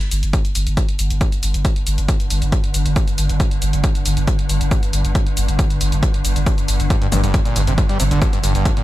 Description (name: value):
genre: driving peak-time techno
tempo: 137 BPM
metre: 4/4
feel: straight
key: unclear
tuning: A4 = 439 Hz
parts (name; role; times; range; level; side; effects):
- swarming drone; drone; 0.6-8.8 s; G2 to D3; -24 LUFS; right 1 dB; built-in reverb, sidechain pumping
- punchy analog drum machine; drums; 0.0-8.8 s; hi-hat, shaker, toms; -26 LUFS; left 1 dB; overdrive, sidechain pumping on hats, sidechain pumping on perc, sidechain pumping on toms
- saturated sub bass; bass; 0.1-8.7 s; G1; -19 LUFS; equal; overdrive, sidechain pumping, low-pass filter
- electronic kick drum; drums; 0.3-8.7 s; none; -18 LUFS; equal; none
- screaming distorted acid line; riff; 6.9-8.8 s; F2 to G3; -22 LUFS; equal; distortion, wide subtle chorus, sidechain pumping, ping-pong delay
room: digital ambience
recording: bright 1980s-style digital production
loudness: -15 LUFS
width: side -15 dB against mid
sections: 0.0-8.8 A section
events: none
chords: 0.0 G5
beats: 0.33 0.77 1.21 | 1.65 2.08 2.52 2.96 | 3.40 3.84 4.28 4.71 | 5.15 5.59 6.03 6.46 | 6.90 7.34 7.78 8.22 | 8.65